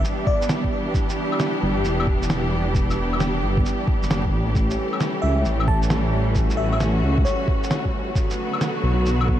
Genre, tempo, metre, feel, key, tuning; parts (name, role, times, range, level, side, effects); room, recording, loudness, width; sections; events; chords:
future garage; 133 BPM; 4/4; swing 66% on 16ths; E dorian; A4 = 437 Hz
bright symphonic string section; sustained chords; 0.0-9.4 s; D3 to G4; -25 LUFS; equal; vintage 12-bit sampler grit, sidechain pumping
dark detuned saw bass; bass; 0.0-9.4 s; E1 to C#2; -22 LUFS; equal
electronic shaker, snare drum and claves; drums; 0.0-9.3 s; -28 LUFS; equal
bell-like FM electric piano; melody; 0.3-0.6, 5.2-7.9 s; C#5 to A5; -30 LUFS; equal; chorus, ping-pong delay
electronic kick drum; drums; 0.3-9.4 s; -22 LUFS; equal
moderate cathedral reverb, RT60 5.3 s; dreamy mix soaked in reverb, vinyl crackle; -19 LUFS; side -11 dB against mid
0.0-9.4 A section
0.0 Em7; 4.6 A7; 8.2 Bm7